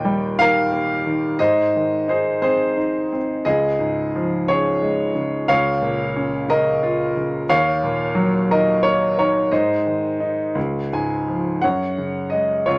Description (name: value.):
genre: classical, lyrical solo piano.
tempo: 59 BPM (dotted quarters).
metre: 6/8.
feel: rubato.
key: Db major.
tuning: A4 = 441 Hz.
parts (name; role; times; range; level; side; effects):
warm grand piano; solo; 0.0-12.8 s; Db2 to Ab5; -20 LUFS; equal; none.
room: light reverb.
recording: none.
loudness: -20 LUFS.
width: mono.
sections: 0.0-11.6 A section; 11.6-12.8 B section.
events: grand piano fill 10.6-11.6.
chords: 0.0 Ebadd9; 1.4 Ab; 3.5 Db; 5.5 Bbm/Db; 7.5 Ebm7; 9.5 Ab; 10.6 Db; 11.6 F#sus2.